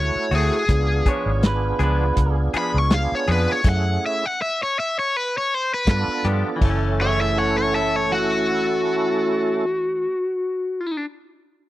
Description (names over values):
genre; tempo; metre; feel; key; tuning
straight-eighth soul blues; 81 BPM; 4/4; swing 56% on 16ths; unclear; A4 = 439 Hz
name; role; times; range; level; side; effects
cranked stack guitar; melody; 0.0-11.1 s; F#4 to C#6; -22 LUFS; left 2 dB; overdrive
tonewheel organ; accompaniment; 0.0-9.7 s; A3 to A4; -26 LUFS; right 5 dB; slow rotary speaker, overdrive, chorus vibrato
vintage muted fingered electric bass; bass; 0.0-9.7 s; F#1 to G2; -22 LUFS; equal; none
direct-recorded clean electric guitar; stabs; 0.3-10.2 s; E3 to G#4; -29 LUFS; left 4 dB; spring reverb
warm soul drum kit; drums; 0.3-6.8 s; crash cymbal, hi-hat, kick drum, snare drum; -21 LUFS; equal; none
electric guitar through a small old amp; second line; 1.1-2.4, 7.0-11.1 s; G#4 to A5; -28 LUFS; right 2 dB; none
room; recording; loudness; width
small room reverb; dry, close 1970s-style studio recording; -19 LUFS; side -15 dB against mid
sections
0.0-6.6 A section; 6.6-9.6 B section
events
none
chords
0.0 D7; 0.7 C#7b9; 3.7 F#m9; 5.9 G7; 6.6 F#m7